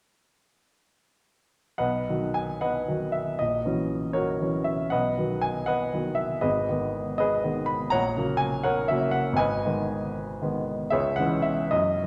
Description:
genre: classical, romantic character piece for solo piano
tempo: 69-85 BPM (dotted quarters)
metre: 6/8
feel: rubato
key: B major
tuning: A4 = 438 Hz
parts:
  - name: clear grand piano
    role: solo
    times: 1.8-12.1 s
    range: G#1 to B5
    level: -26 LUFS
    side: equal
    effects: none
room: wet recital hall reverb, RT60 1.4 s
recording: heard from further back in the room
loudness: -27 LUFS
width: mono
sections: 1.8-12.1 A section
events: none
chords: 1.8 B; 3.4 F#7/A#; 4.9 B; 6.5 G#m; 7.9 F#/A#; 9.4 G#m; 10.9 C#m

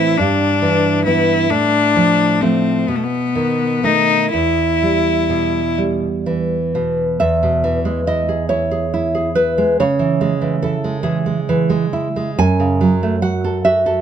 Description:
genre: romantic duo for cello and classical guitar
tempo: 40-49 BPM (dotted quarters)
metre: 6/8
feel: rubato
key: E minor, E major from 7.2 s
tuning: A4 = 440 Hz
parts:
  - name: rich cello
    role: melody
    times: 0.0-5.8 s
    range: A3 to E4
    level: -15 LUFS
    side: left 3 dB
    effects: none
  - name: nylon-string guitar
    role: accompaniment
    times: 0.0-14.0 s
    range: E2 to G#5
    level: -16 LUFS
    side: right 2 dB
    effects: none
room: light reverb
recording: close, detailed microphones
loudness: -14 LUFS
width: side -8 dB against mid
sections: 0.0-7.2 A section; 7.2-14.0 B section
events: none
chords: 0.2 Em/G; 1.5 F/A; 2.9 B7; 4.3 Em; 7.2 E; 9.8 C#m; 12.4 F#m

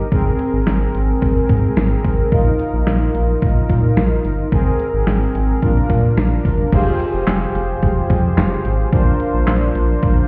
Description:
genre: synth-pop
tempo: 109 BPM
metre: 4/4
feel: straight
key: F dorian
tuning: A4 = 441 Hz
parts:
  - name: analog synth brass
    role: accompaniment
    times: 0.0-10.3 s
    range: C4 to C5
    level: -23 LUFS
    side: equal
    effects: chorus, shimmer reverb
  - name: round analog bass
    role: bass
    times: 0.0-10.2 s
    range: F1 to Bb2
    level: -20 LUFS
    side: equal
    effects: none
  - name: detuned 8-bit digital drum machine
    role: drums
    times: 0.1-10.2 s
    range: crash cymbal, handclaps, hi-hat, kick drum, snare drum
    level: -21 LUFS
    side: equal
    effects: none
room: light reverb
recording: heard muffled through a wall, stone room reverb, EQ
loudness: -17 LUFS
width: mono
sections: 0.0-6.7 A section; 6.7-10.3 B section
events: none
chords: 0.1 Abadd9; 2.3 Bbsus4; 4.5 Abadd9; 5.6 Bb; 6.7 Fmadd9; 8.9 Bbadd9

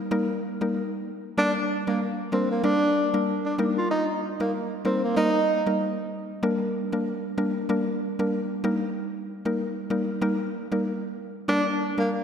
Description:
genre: afrobeats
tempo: 95 BPM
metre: 4/4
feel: swing 58% on 16ths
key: Eb major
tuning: A4 = 440 Hz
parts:
  - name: mallet-like synth pluck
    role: accompaniment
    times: 0.0-12.2 s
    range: G3 to Bb4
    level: -26 LUFS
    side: equal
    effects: chorus
  - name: breathy tenor saxophone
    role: melody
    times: 1.4-5.6, 11.5-12.1 s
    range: Bb3 to F4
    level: -25 LUFS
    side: right 1 dB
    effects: analog delay
room: wet lush hall reverb, RT60 2.5 s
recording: dreamy mix soaked in reverb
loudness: -24 LUFS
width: side -7 dB against mid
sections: 0.0-11.5 A section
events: none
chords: 0.0 Eb; 1.4 Gm; 3.6 Eb; 6.4 Gm; 8.6 Eb; 11.5 Gm

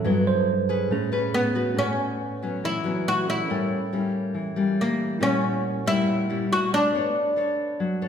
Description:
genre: bossa nova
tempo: 139 BPM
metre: 4/4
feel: straight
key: unclear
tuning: A4 = 440 Hz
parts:
  - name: bell-like tine electric piano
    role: accompaniment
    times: 0.0-8.1 s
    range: G2 to A5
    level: -30 LUFS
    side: right 6 dB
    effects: none
  - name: nylon-string guitar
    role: accompaniment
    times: 0.0-8.1 s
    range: G2 to C#5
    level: -26 LUFS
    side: left 3 dB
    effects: none
  - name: oud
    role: melody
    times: 1.3-7.6 s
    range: Bb3 to F#4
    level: -24 LUFS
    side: equal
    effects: none
room: wet recital hall reverb, RT60 1.8 s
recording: recorded in a church or concert hall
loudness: -22 LUFS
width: side -8 dB against mid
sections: 0.0-1.8 A section; 1.8-8.1 B section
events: tine electric piano solo 0.0-1.8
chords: 0.1 G6; 0.9 Amaj9; 1.8 A69; 3.5 A7b9; 5.2 F#7b9/A#; 6.9 Bm9

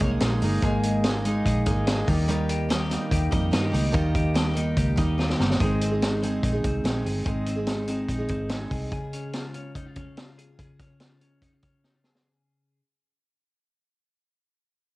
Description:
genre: jangly indie pop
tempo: 145 BPM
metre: 4/4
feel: straight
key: Ab major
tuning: A4 = 440 Hz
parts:
  - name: picked steel-string acoustic guitar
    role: accompaniment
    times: 0.0-9.4 s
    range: Eb3 to Ab4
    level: -27 LUFS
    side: right 2 dB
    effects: cassette tape
  - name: twelve-string electric guitar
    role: arpeggios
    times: 0.0-12.8 s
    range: Db3 to Eb5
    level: -31 LUFS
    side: left 2 dB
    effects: spring reverb, cassette tape
  - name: vintage muted fingered electric bass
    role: bass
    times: 0.0-8.9 s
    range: G1 to G2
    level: -27 LUFS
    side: equal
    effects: none
  - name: vintage drum kit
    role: drums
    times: 0.0-12.2 s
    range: hi-hat, kick drum, snare drum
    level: -28 LUFS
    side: equal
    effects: cassette tape
room: wet booth ambience, RT60 0.2 s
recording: home recording on cassette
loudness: -22 LUFS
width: side -20 dB against mid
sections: 0.0-5.6 A section; 5.6-12.3 B section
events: drum fill 5.2-5.6, 11.8-12.3; fade-out 5.6-12.3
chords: 0.0 Absus2; 2.1 Eb; 5.6 Ab; 8.9 Db

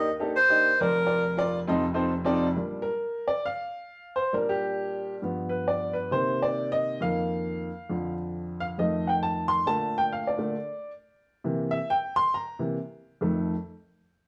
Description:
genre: gospel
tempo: 135 BPM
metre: 4/4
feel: swing 59% on 8ths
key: Bb major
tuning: A4 = 439 Hz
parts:
  - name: breathy alto saxophone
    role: melody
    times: 0.0-1.5 s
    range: Bb4 to Eb5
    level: -24 LUFS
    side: equal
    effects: none
  - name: warm upright piano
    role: accompaniment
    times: 0.0-13.5 s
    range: F1 to C6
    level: -28 LUFS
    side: equal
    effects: none
room: moderate studio reverb, RT60 0.8 s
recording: band playing live in one room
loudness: -27 LUFS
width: mono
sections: 0.0-2.6 A section; 2.6-14.3 B section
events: upright piano solo 2.6-14.3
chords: 0.0 Ebmaj7; 0.8 Bb/F; 1.7 F7; 2.6 Bb6; 5.2 G7; 6.1 Cm7; 7.0 F7sus4; 7.9 Dm/F; 8.8 F7; 9.7 Bbmaj7; 11.4 C7; 13.2 F7

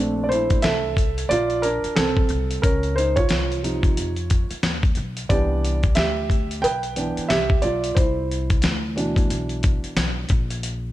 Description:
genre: hip hop, jazz-hop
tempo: 90 BPM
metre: 4/4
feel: swing 61% on 16ths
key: C major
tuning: A4 = 440 Hz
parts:
  - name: dark concert grand piano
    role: accompaniment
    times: 0.0-10.3 s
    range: B2 to G5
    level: -23 LUFS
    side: right 2 dB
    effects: none
  - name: upright bass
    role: bass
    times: 0.0-10.9 s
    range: Bb1 to F2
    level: -27 LUFS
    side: left 1 dB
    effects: none
  - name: dusty soul sampler-style drum kit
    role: drums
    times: 0.3-10.8 s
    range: hi-hat, kick drum, snare drum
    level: -22 LUFS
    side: left 1 dB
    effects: none
room: light reverb, small room ambience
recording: none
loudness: -19 LUFS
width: side -15 dB against mid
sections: 0.0-10.9 A section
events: grand piano solo 0.0-10.9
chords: 0.0 Bbmaj9; 2.6 Dbmaj9; 5.3 Cmaj9; 10.3 N.C.

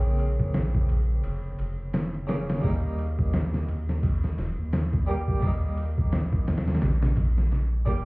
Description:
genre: trip hop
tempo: 86 BPM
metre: 4/4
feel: swing 58% on 16ths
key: unclear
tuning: A4 = 440 Hz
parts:
  - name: harpsichord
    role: accompaniment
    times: 0.0-8.1 s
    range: C#3 to G4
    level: -33 LUFS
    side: right 1 dB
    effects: tremolo, vintage 12-bit sampler grit, tape echo
  - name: soft dub sub bass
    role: bass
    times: 0.0-8.1 s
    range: D#1 to D#2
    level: -26 LUFS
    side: equal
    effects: none
  - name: trip hop sampler-style drum kit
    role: drums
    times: 0.2-8.1 s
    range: kick drum, ride cymbal, snare drum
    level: -27 LUFS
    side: equal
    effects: none
room: little or no reverb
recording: heard muffled through a wall, club reverb, vinyl crackle, EQ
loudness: -24 LUFS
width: side -26 dB against mid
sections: 0.0-8.1 A section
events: none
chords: 0.0 A#madd9; 2.6 D#

